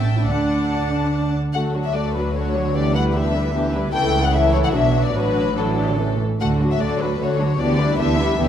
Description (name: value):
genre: quick classical-period movement for string orchestra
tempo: 147 BPM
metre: 3/4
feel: uneven beats, rubato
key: D major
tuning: A4 = 438 Hz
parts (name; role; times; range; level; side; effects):
- warm symphonic violin section; melody; 0.0-8.5 s; A4 to A5; -24 LUFS; left 6 dB; none
- warm symphonic violin section; second line; 0.0-8.5 s; C#4 to G5; -26 LUFS; left 3 dB; none
- rich symphonic cello section; bass; 0.0-8.5 s; A2 to E3; -25 LUFS; right 1 dB; none
- warm symphonic double bass section; bass; 0.0-8.5 s; A1 to D2; -23 LUFS; right 2 dB; none
- dark symphonic viola section; accompaniment; 0.2-8.5 s; E3 to E4; -24 LUFS; right 2 dB; none
room: wet scoring stage reverb, RT60 1.6 s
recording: dark, warm production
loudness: -17 LUFS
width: side -9 dB against mid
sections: 0.0-1.5 A section; 1.5-8.5 A section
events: none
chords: 0.3 D; 2.8 Em7/D; 3.9 A/C#; 4.7 Bm; 5.2 D/A; 6.0 A; 6.4 D; 7.6 Em7/D